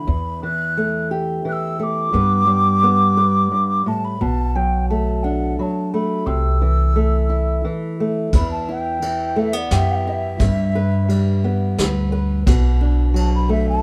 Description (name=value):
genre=acoustic folk duo or small band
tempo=87 BPM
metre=3/4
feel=straight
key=E minor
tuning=A4 = 439 Hz
part: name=breathy mellow wooden flute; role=melody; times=0.0-13.8 s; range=D5 to F#6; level=-24 LUFS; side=equal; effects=none
part: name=fingerpicked old ladder-braced acoustic guitar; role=accompaniment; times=0.0-13.8 s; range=E2 to B4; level=-24 LUFS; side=equal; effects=none
part: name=upright bass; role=bass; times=0.1-13.8 s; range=B1 to G2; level=-22 LUFS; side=equal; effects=none
part: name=soft brush drum kit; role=drums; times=8.3-13.3 s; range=kick drum, ride cymbal, snare drum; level=-25 LUFS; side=equal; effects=none
room=light reverb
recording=none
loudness=-19 LUFS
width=mono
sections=0.0-8.3 A section; 8.3-13.8 B section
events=flute solo 8.3-13.8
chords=0.1 Emadd9; 2.1 G; 4.2 Bm7; 6.3 Am/C; 8.3 Emadd9; 10.4 G; 12.5 Bm7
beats=| 0.07 0.76 1.45 | 2.14 2.83 3.52 | 4.20 4.89 5.58 | 6.27 6.96 7.65 | 8.34 9.03 9.71 | 10.40 11.09 11.78 | 12.46 13.15